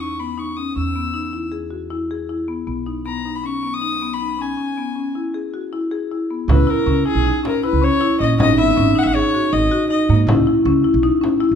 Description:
contemporary instrumental, chamber music in an uneven meter; 158 BPM; 5/4; straight; C# dorian; A4 = 440 Hz
warm violin; melody; 0.0-10.2 s; G#4 to E6; -22 LUFS; left 5 dB
marimba with medium hard mallets; arpeggios; 0.0-11.5 s; A#3 to G#4; -21 LUFS; left 2 dB
upright bass; bass; 0.0-11.6 s; G#1 to G#2; -21 LUFS; right 3 dB
vibraphone with medium mallets; second line; 6.5-11.6 s; D#4 to E4; -20 LUFS; right 1 dB
frame drum; percussion; 6.5-11.5 s; -24 LUFS; left 1 dB
moderate recital hall reverb, RT60 1.6 s; minimal, uncompressed stereo recording; -16 LUFS; side -7 dB against mid
0.0-6.5 A section; 6.5-11.6 B section
0.0 Emaj7(no3); 2.7 B; 4.6 C#m7; 8.4 G#5; 10.3 C#m7

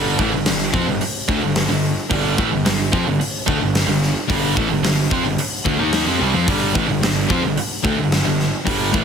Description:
hard rock; 110 BPM; 4/4; straight; A4 = 439 Hz
crunchy overdriven guitar; riff; 0.0-9.0 s; G2 to Eb4; -22 LUFS; left 10 dB
tight distorted guitar; riff; 0.0-9.0 s; G2 to Eb4; -21 LUFS; right 9 dB; distortion
fuzz picked electric bass; bass; 0.0-9.0 s; G1 to F2; -24 LUFS; equal; overdrive
big rock drum kit; drums; 0.2-9.0 s; hi-hat, kick drum, snare drum; -21 LUFS; equal
light reverb; heavily compressed radio sound, multiband compression; -16 LUFS; side -7 dB against mid
0.0-9.0 A section
0.0 G5

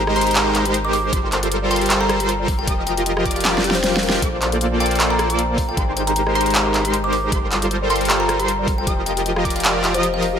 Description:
future bass; 155 BPM; 4/4; swing 55% on 16ths, half-time; A4 = 440 Hz
kalimba; melody; 0.0-10.3 s; C5 to D6; -24 LUFS; left 2 dB; sidechain pumping, digital delay
wide unison pluck; arpeggios; 0.0-10.4 s; C6 to G6; -30 LUFS; right 2 dB; sidechain pumping, tape echo
soft supersaw; riff; 0.0-10.4 s; F3 to G5; -21 LUFS; equal; sidechain pumping
long sustained 808-style bass; bass; 0.0-10.4 s; F1 to Bb1; -26 LUFS; equal; sidechain pumping
soft round pluck; arpeggios; 0.1-10.4 s; G4 to D6; -31 LUFS; left 3 dB; chorus, sidechain pumping, tape echo
dubstep drum kit; drums; 0.1-10.3 s; handclaps, hi-hat, rim click, snare drum; -22 LUFS; equal; overdrive
electronic kick drum; drums; 1.1-9.5 s; -23 LUFS; equal; overdrive
light reverb, digital ambience; -16 LUFS; side -8 dB against mid
0.0-10.4 A section
drum fill 3.5-4.2
0.0 Abmaj9; 1.1 Gm11; 2.7 F9sus4; 4.2 Bbmaj7; 5.8 Abmaj9; 7.3 Gm11; 8.9 F9sus4

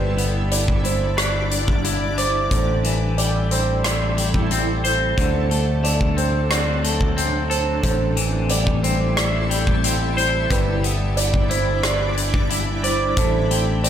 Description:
post-rock; 90 BPM; 4/4; straight; A dorian; A4 = 440 Hz
shimmering ambient pad; sustained chords; 0.0-13.9 s; F#3 to D5; -27 LUFS; equal; chorus, built-in reverb
felt-muted upright piano; arpeggios; 0.0-13.9 s; B4 to D5; -27 LUFS; right 5 dB; tape echo
twangy electric guitar; arpeggios; 0.0-13.9 s; A2 to D5; -25 LUFS; left 3 dB; spring reverb, tape echo
fingered electric bass; bass; 0.0-13.9 s; G1 to D2; -22 LUFS; equal
big rock drum kit; drums; 0.2-13.9 s; hi-hat, kick drum, rim click; -23 LUFS; equal
moderate large studio reverb, RT60 1.5 s, small room ambience; -18 LUFS; side -9 dB against mid
0.0-13.9 A section
0.0 G6; 2.5 Am7; 5.2 D7; 7.8 Am7; 10.5 G6; 13.2 Am7

